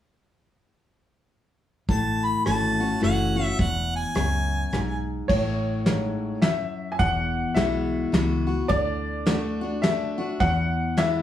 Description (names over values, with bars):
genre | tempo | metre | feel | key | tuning
honky-tonk and classic country | 106 BPM | 3/4 | swing 62% on 8ths | A major | A4 = 440 Hz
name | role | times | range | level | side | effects
clear harmonica | melody | 1.9-5.0 s | F#5 to B5 | -27 LUFS | equal | none
picked steel-string acoustic guitar | accompaniment | 1.9-11.2 s | E2 to F#4 | -27 LUFS | left 3 dB | none
vintage muted fingered electric bass | bass | 1.9-11.2 s | E1 to E2 | -28 LUFS | equal | none
soft brush drum kit | drums | 1.9-11.1 s | crash cymbal, hi-hat, kick drum, rim click, snare drum | -24 LUFS | equal | none
bright upright piano | second line | 5.3-11.2 s | C#5 to G#5 | -27 LUFS | equal | none
room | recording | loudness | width
wet studio reverb, RT60 0.7 s | heard from further back in the room, small room ambience | -22 LUFS | side -11 dB against mid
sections
1.9-5.3 A section; 5.3-11.2 B section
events
upright piano solo 5.3-11.2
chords
1.9 A6; 3.6 Eadd9; 5.3 A6; 7.0 Eadd9; 8.7 D; 10.4 E